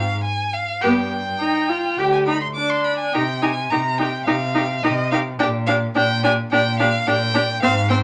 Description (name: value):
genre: quick classical-period movement for string quartet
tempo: 106 BPM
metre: 4/4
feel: rubato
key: unclear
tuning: A4 = 436 Hz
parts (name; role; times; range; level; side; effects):
- warm violin; melody; 0.0-8.0 s; Eb5 to D6; -26 LUFS; equal; none
- rich cello; bass; 0.0-8.0 s; D2 to C3; -27 LUFS; equal; none
- rich violin; second line; 0.8-8.0 s; G4 to C5; -29 LUFS; equal; none
- rich viola; accompaniment; 0.8-8.0 s; B3 to G4; -22 LUFS; equal; none
room: moderate studio reverb, RT60 0.5 s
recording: none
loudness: -20 LUFS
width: mono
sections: 0.0-8.0 A section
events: none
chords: 0.0 Fm/Ab; 0.8 G5; 3.1 Cm; 5.4 Gm/Bb